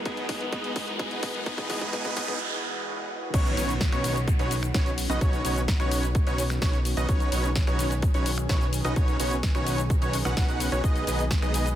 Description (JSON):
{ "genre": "EDM, festival progressive house", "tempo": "128 BPM", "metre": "4/4", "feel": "straight", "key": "B major", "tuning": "A4 = 440 Hz", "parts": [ { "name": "clean electric guitar", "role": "accompaniment", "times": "0.0-2.4 s", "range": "B2 to A#4", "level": "-41 LUFS", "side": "left 2 dB", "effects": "none" }, { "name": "lush unison pad", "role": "sustained chords", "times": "0.0-11.8 s", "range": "D#3 to G#4", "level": "-36 LUFS", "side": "equal", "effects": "chorus, sidechain pumping" }, { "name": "fat analog bass", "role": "bass", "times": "0.0-11.8 s", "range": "B1", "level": "-30 LUFS", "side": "equal", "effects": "sidechain pumping, high-pass filter" }, { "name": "riser, noise sweep and downlifter", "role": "sound effects", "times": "0.0-7.1 s", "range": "none", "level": "-34 LUFS", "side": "right 2 dB", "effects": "none" }, { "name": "dense compressed supersaw", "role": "riff", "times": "0.1-11.7 s", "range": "B3 to F#5", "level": "-32 LUFS", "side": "right 1 dB", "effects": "cassette tape, sidechain pumping, dub echo" }, { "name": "electronic kick drum", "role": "drums", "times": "0.1-11.4 s", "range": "none", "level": "-26 LUFS", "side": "equal", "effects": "small room ambience" }, { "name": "house drum kit", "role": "drums", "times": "0.1-11.8 s", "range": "crash cymbal, finger snaps, hi-hat, shaker, snare drum", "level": "-33 LUFS", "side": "left 2 dB", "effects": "small room ambience" }, { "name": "wide unison lead", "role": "arpeggios", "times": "3.3-11.7 s", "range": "C#5 to F#5", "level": "-32 LUFS", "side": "equal", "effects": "sidechain pumping, dub echo" } ], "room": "light reverb, digital ambience", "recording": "dense, heavily limited modern master, high-pass filter", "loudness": "-24 LUFS", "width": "side -12 dB against mid", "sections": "0.0-3.3 A section; 3.3-11.8 B section", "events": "build-up 0.0-3.3; drum fill 0.0-2.4; riser 0.0-2.4; noise sweep 1.5-3.3; break 2.4-3.3; drop 3.3-11.8", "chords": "0.0 Eadd9/B; 3.3 Badd9; 10.8 G#m/B" }